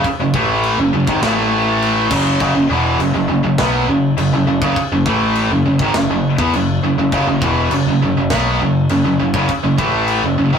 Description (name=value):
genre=heavy metal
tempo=102 BPM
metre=4/4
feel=straight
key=F# minor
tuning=A4 = 440 Hz
part: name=tight distorted guitar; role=riff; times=0.0-10.6 s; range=E2 to B3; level=-15 LUFS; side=equal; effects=distortion
part: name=growling picked electric bass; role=bass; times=0.0-10.6 s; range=E1 to E2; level=-20 LUFS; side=equal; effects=overdrive
part: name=tight metal drum kit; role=drums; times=0.0-10.2 s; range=china cymbal, crash cymbal, kick drum, snare drum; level=-24 LUFS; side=left 2 dB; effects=none
room=moderate small room ambience, RT60 0.5 s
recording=rough rehearsal-room recording, warm saturation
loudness=-13 LUFS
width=side -7 dB against mid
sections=0.0-10.6 A section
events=none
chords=0.0 F#m; 1.2 A5; 2.1 F#m